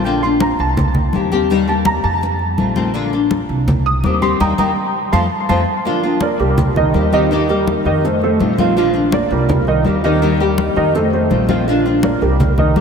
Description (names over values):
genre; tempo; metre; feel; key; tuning
latin, Cuban son and guajira; 165 BPM; 4/4; straight; Bb major; A4 = 437 Hz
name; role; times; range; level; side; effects
nylon-string guitar; accompaniment; 0.0-12.8 s; D3 to G4; -19 LUFS; left 3 dB; lush chorus
dark grand piano; arpeggios; 0.0-12.8 s; Eb3 to Eb6; -17 LUFS; right 2 dB; analog chorus, ping-pong delay
upright bass; bass; 0.0-12.8 s; Bb1 to F2; -20 LUFS; right 1 dB; none
congas; percussion; 0.0-12.8 s; none; -21 LUFS; left 2 dB; none
room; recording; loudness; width
wet cathedral reverb, RT60 6.4 s; dreamy mix soaked in reverb; -13 LUFS; side -6 dB against mid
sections
0.0-5.9 A section; 5.9-12.8 B section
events
grand piano solo 0.0-5.9; band accent 4.4-5.9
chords
0.0 Bb; 0.8 Cm7; 1.5 Eb; 2.2 F7; 3.0 Bb; 3.7 Cm7; 4.4 Eb; 5.1 F; 5.9 Bb; 6.6 Cm7; 7.3 Eb; 8.0 F7; 8.8 Bb; 9.5 Cm7; 10.2 Eb; 10.9 F7; 11.7 Bb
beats
| 0.05 0.41 0.77 1.14 | 1.50 1.86 2.23 2.59 | 2.95 3.31 3.68 4.04 | 4.40 4.77 5.13 5.49 | 5.86 6.22 6.58 6.95 | 7.31 7.67 8.03 8.40 | 8.76 9.12 9.49 9.85 | 10.21 10.58 10.94 11.30 | 11.67 12.03 12.39 12.76